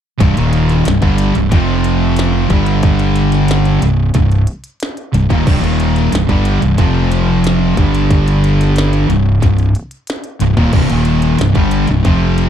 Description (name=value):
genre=stoner and doom metal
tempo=91 BPM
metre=4/4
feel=straight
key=C minor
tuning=A4 = 440 Hz
part: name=thick fuzz guitar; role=riff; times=0.2-12.5 s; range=C2 to G3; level=-16 LUFS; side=left 6 dB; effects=distortion
part: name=thick fuzz guitar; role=riff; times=0.2-12.5 s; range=C2 to G3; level=-16 LUFS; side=right 7 dB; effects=distortion
part: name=tight distorted guitar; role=riff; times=0.2-12.5 s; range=C2 to G3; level=-19 LUFS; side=equal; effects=distortion
part: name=fuzz fingered electric bass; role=bass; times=0.2-12.5 s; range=C1 to G1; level=-17 LUFS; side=equal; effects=overdrive
part: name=glitchy drum kit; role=drums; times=0.2-12.5 s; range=crash cymbal, hi-hat, kick drum, snare drum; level=-17 LUFS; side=equal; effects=none
room=light reverb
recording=dark, warm production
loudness=-11 LUFS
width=side -9 dB against mid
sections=0.2-12.5 A section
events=none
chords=0.2 Cm; 1.5 F5; 2.5 G5; 3.8 Cm; 6.8 F5; 7.8 G5; 9.1 Cm